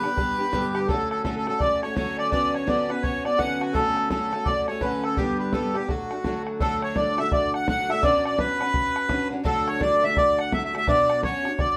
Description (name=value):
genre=celtic folk, Celtic hornpipe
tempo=168 BPM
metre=4/4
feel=swing 62% on 8ths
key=D major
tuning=A4 = 440 Hz
part: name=accordion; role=melody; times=0.0-11.8 s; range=F#4 to F#5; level=-26 LUFS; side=equal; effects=none
part: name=fingerpicked twelve-string acoustic guitar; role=accompaniment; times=0.0-11.8 s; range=G2 to G4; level=-31 LUFS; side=equal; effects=none
part: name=bodhran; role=percussion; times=0.0-11.7 s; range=none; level=-32 LUFS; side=equal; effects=none
room=wet studio ambience, RT60 0.5 s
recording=band playing live in one room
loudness=-24 LUFS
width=mono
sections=0.0-6.6 A section; 6.6-11.8 B section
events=none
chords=0.0 G; 0.9 Dmaj7; 2.3 Bmadd9/D; 3.7 Dmaj7; 5.2 G; 5.9 D; 8.0 Bmadd9; 9.5 D; 10.9 Bmadd9